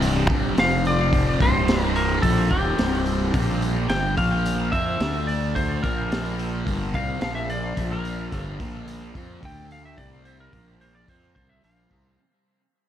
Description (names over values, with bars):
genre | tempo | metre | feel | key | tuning
psychedelic rock | 108 BPM | 4/4 | straight | unclear | A4 = 442 Hz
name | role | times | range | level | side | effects
overdriven tonewheel organ | sustained chords | 0.0-12.2 s | F3 to D5 | -37 LUFS | right 2 dB | none
thick fuzz guitar | riff | 0.0-12.2 s | C2 to F4 | -26 LUFS | left 1 dB | distortion, phaser, tape echo
fuzz fingered electric bass | bass | 0.0-12.2 s | C1 to F2 | -27 LUFS | equal | overdrive
crunchy breakbeat drum kit | drums | 0.0-12.0 s | hi-hat, kick drum, snare drum | -27 LUFS | equal | none
clean lap steel guitar | melody | 0.6-12.2 s | G4 to G5 | -27 LUFS | left 1 dB | tape echo
room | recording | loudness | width
light reverb, small room ambience | echo-heavy mix | -20 LUFS | side -10 dB against mid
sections
0.0-12.2 A section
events
electric slide guitar solo 0.0-12.2; fade-out 1.6-12.2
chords
0.0 C; 0.6 F5; 1.4 C; 3.3 Bbadd9; 5.0 D5; 5.8 Bbadd9; 9.4 D5; 10.0 C5; 10.5 Bbadd9